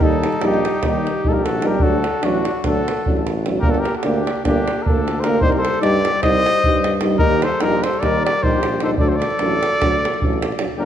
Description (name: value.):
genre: balkan folk, Balkan brass band.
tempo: 300 BPM (eighths).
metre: 9/8.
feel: straight.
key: D phrygian dominant.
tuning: A4 = 439 Hz.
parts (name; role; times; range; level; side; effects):
mellow trumpet; melody; 0.0-10.9 s; F#4 to Eb5; -21 LUFS; equal; tape echo.
warm flugelhorn; second line; 0.0-10.9 s; D4 to C5; -26 LUFS; left 3 dB; none.
warm euphonium; accompaniment; 0.0-10.9 s; D4 to Eb4; -25 LUFS; left 5 dB; none.
warm euphonium; accompaniment; 0.0-10.9 s; F#3 to Bb3; -24 LUFS; right 4 dB; none.
clear tuba; bass; 0.0-10.9 s; G1 to G2; -24 LUFS; equal; none.
davul; percussion; 0.0-10.7 s; none; -22 LUFS; right 2 dB; none.
room: moderate scoring stage reverb, RT60 1.9 s.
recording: none.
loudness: -16 LUFS.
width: side -10 dB against mid.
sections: 0.0-10.8 A section.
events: none.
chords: 0.0 Eb; 1.8 D; 3.6 Gm; 5.4 Cm; 7.2 Eb; 9.0 D.